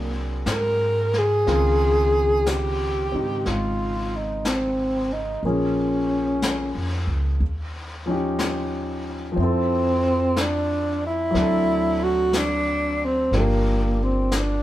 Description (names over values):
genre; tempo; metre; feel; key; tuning
jazz ballad; 61 BPM; 4/4; swing 68% on 8ths; unclear; A4 = 439 Hz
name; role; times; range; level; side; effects
breathy tenor saxophone; melody; 0.0-14.6 s; Bb3 to Bb4; -22 LUFS; equal; none
warm concert grand piano; accompaniment; 0.0-14.6 s; Db3 to Bb4; -27 LUFS; left 1 dB; none
upright bass; bass; 0.0-14.6 s; G1 to Ab2; -26 LUFS; equal; none
vintage brush drum kit; drums; 0.5-14.6 s; brushed snare drum, hi-hat, snare drum; -32 LUFS; left 2 dB; none
room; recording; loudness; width
moderate stone room reverb, RT60 1.0 s; band playing live in one room; -20 LUFS; side -14 dB against mid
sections
0.0-14.6 A section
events
none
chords
0.0 Ab9; 1.5 Dbmaj9; 5.4 Bbm7; 7.4 Eb9; 9.4 Fmaj7; 11.3 D7; 13.3 Gm7